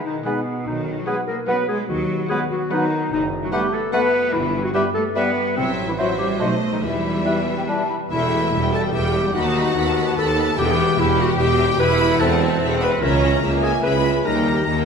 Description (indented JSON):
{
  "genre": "cinematic, playful, whimsical film cue",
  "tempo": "146 BPM",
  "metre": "3/4",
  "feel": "straight",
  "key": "E minor from 3.1 s",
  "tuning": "A4 = 439 Hz",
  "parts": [
    { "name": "rich studio violin section", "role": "melody", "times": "0.0-14.8 s", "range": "D#5 to B5", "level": "-31 LUFS", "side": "left 3 dB", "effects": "none" },
    { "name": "rich studio violin section", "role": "second line", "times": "0.0-14.8 s", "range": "B4 to B5", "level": "-29 LUFS", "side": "left 2 dB", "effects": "none" },
    { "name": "rich studio viola section", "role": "accompaniment", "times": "0.0-14.8 s", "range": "F#3 to G4", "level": "-26 LUFS", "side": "right 1 dB", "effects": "none" },
    { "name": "concert harp", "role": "arpeggios", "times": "0.0-14.8 s", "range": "F#2 to B5", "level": "-28 LUFS", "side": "left 6 dB", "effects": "none" },
    { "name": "clear studio cello section", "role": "bass", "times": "0.0-14.8 s", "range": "C#2 to B3", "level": "-26 LUFS", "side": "right 2 dB", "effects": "none" },
    { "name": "mellow clarinet", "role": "second line", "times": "0.1-14.8 s", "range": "B3 to B4", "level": "-23 LUFS", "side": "left 1 dB", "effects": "none" },
    { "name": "warm oboe", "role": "second line", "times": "0.2-7.8 s", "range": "B4 to C5", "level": "-32 LUFS", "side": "right 2 dB", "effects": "none" },
    { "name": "mellow silver concert flute", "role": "second line", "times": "0.3-8.0 s", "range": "D#5 to B5", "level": "-31 LUFS", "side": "left 2 dB", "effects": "none" },
    { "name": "warm bassoon", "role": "accompaniment", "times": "0.3-7.8 s", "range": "F#3 to B3", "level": "-31 LUFS", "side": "right 2 dB", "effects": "none" },
    { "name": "warm French horn section", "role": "sustained chords", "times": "0.3-7.8 s", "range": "F#3 to E4", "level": "-32 LUFS", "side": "left 4 dB", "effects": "none" },
    { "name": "clear studio double bass section", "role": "bass", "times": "0.7-14.8 s", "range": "E1 to E2", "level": "-28 LUFS", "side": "right 3 dB", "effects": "none" },
    { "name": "warm tuba", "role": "bass", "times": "0.7-14.8 s", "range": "E1 to D#2", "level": "-28 LUFS", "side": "right 4 dB", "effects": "none" }
  ],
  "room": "wet scoring stage reverb, RT60 1.9 s",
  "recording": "minimal, uncompressed stereo recording",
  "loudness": "-17 LUFS",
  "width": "side -6 dB against mid",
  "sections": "0.0-8.1 A section; 8.1-14.8 B section",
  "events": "none",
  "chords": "0.0 G#m/B; 0.7 B; 1.9 B/D#; 3.1 B7/F#; 4.3 Em/G; 5.6 F#m7b5/A; 6.4 B7b9; 6.8 Em; 9.3 B7/D#; 10.6 Em; 11.8 F#m7b5/E; 13.0 C#m; 14.3 D#"
}